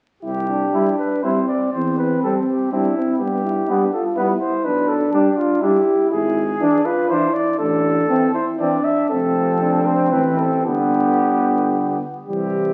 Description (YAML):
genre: classical, brass quintet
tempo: 109-126 BPM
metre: 3/4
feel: rubato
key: C major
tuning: A4 = 440 Hz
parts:
  - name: mellow trumpet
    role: melody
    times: 0.2-12.7 s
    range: E4 to E5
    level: -25 LUFS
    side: equal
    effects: none
  - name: warm French horn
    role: accompaniment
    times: 0.2-12.7 s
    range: G3 to G4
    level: -23 LUFS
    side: equal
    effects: none
  - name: clear bass trombone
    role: bass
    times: 0.2-12.7 s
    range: F1 to G2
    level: -29 LUFS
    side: equal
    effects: none
  - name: warm flugelhorn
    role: second line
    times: 0.7-12.7 s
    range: B3 to E4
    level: -26 LUFS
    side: equal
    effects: none
  - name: mellow euphonium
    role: accompaniment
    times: 0.7-12.7 s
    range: D3 to G3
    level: -27 LUFS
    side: equal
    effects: none
room: wet recital hall reverb, RT60 1.4 s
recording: very old 78 rpm record, vinyl crackle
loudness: -19 LUFS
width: mono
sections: 0.2-12.3 A section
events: none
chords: 0.2 C; 1.7 C/E; 3.2 G; 4.7 G/B; 6.1 E7/G#; 7.6 Am; 9.1 F; 10.7 G